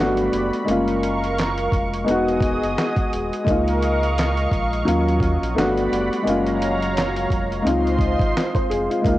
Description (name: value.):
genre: lo-fi hip hop.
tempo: 86 BPM.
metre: 4/4.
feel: swing 58% on 16ths.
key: Db major.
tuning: A4 = 441 Hz.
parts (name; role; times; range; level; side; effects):
dark upright piano; accompaniment; 0.0-9.2 s; Gb3 to C5; -21 LUFS; left 1 dB; cassette tape.
lush unison pad; sustained chords; 0.0-9.0 s; Gb3 to D#6; -25 LUFS; right 2 dB; chorus, cassette tape.
sub bass with octave; bass; 0.0-9.2 s; D#1 to Eb2; -26 LUFS; equal; transformer saturation.
dusty soul sampler-style drum kit; drums; 0.0-9.2 s; handclaps, hi-hat, kick drum, snare drum; -24 LUFS; equal; overdrive, cassette tape.
room: light reverb, digital ambience.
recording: home recording on cassette.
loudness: -18 LUFS.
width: side -15 dB against mid.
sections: 0.0-9.0 A section.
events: none.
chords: 0.0 Gmaj7; 0.7 Gbmaj7; 2.1 Emaj9; 3.5 Db69; 4.9 Ebm9; 5.6 Gmaj7; 6.2 Gbmaj7; 7.6 Dbmaj9.